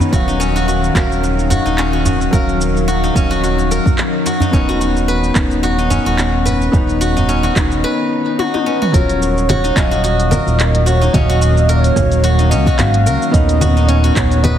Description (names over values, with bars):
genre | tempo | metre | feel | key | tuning
organic downtempo | 109 BPM | 4/4 | swing 55% on 16ths | Eb minor | A4 = 436 Hz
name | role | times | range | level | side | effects
felt-muted upright piano | accompaniment | 0.0-14.6 s | Gb3 to F5 | -21 LUFS | left 1 dB | sidechain pumping, ping-pong delay
bowed-like drone | sustained chords | 0.0-14.6 s | D#3 to F5 | -23 LUFS | left 2 dB | built-in reverb, sidechain pumping
steel-string zither | arpeggios | 0.0-14.6 s | C#4 to B4 | -19 LUFS | left 3 dB | ping-pong delay
organic electronic drum kit | drums | 0.0-14.6 s | congas, handclaps, hi-hat, shaker, toms | -22 LUFS | left 1 dB | none
djembe | percussion | 0.0-7.5 s | none | -21 LUFS | right 2 dB | none
smooth synth bass | bass | 0.1-14.6 s | Eb1 to Db2 | -16 LUFS | right 1 dB | tube saturation, sidechain pumping
electronic kick drum | drums | 0.1-14.3 s | none | -16 LUFS | right 1 dB | none
swell | sound effects | 8.1-8.9 s | none | -26 LUFS | left 6 dB | none
breathy flute-like synth lead | melody | 8.7-14.6 s | B4 to F5 | -20 LUFS | right 1 dB | lush chorus, ping-pong delay
room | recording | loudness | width
light reverb, digital ambience | heavily compressed radio sound | -12 LUFS | side -10 dB against mid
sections
0.0-8.9 A section; 8.9-14.6 B section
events
swell 8.1-8.9; drum fill 8.4-8.9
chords
0.1 Ebm7; 4.5 Badd9/D#; 8.9 Ebm7; 13.3 Badd9/D#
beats
| 0.13 0.68 1.23 1.78 | 2.33 2.88 3.43 3.98 | 4.53 5.08 5.63 6.18 | 6.74 7.29 7.84 8.39 | 8.94 9.49 10.04 10.59 | 11.14 11.69 12.24 12.79 | 13.34 13.89 14.44